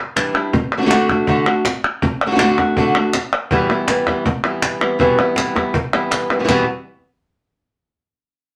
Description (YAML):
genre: flamenco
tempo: 161 BPM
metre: 4/4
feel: straight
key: E minor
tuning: A4 = 440 Hz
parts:
  - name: flamenco guitar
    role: melody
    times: 0.2-6.6 s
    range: E2 to F#4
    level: -19 LUFS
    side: equal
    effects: none
  - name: cajon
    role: percussion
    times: 0.2-6.6 s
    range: none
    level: -26 LUFS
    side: equal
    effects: none
  - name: palmas hand claps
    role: percussion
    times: 0.2-6.6 s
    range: none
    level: -23 LUFS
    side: equal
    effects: none
room: wet studio reverb, RT60 0.5 s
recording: none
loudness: -17 LUFS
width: mono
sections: 0.0-6.5 A section; 6.5-8.0 B section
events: none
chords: 0.0 Cadd9 (rootless); 0.5 D; 3.5 Em; 6.5 N.C.